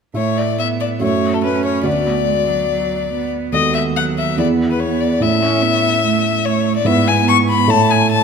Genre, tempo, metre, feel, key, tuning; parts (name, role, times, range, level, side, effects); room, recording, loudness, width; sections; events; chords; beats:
quick classical-period movement for piano trio; 144 BPM; 4/4; rubato; A major; A4 = 440 Hz
rich cello; second line; 0.1-8.2 s; F#3 to C#4; -21 LUFS; right 10 dB
dark baby grand piano; accompaniment; 0.1-8.2 s; D2 to E5; -18 LUFS; right 2 dB
rich violin; melody; 0.2-8.2 s; A4 to C#6; -17 LUFS; left 8 dB
moderate concert hall reverb, RT60 1.9 s; -14 LUFS; side -6 dB against mid
0.2-8.2 A section
0.2 A5; 1.0 F#m7; 1.9 Bm/D; 3.5 B7/D#; 4.4 E; 5.2 A; 6.9 E/G#; 7.7 A
| 0.16 0.59 1.02 1.44 | 1.86 2.28 2.70 3.12 | 3.54 3.97 4.39 4.81 | 5.22 5.63 6.04 6.45 | 6.86 7.28 7.70 8.11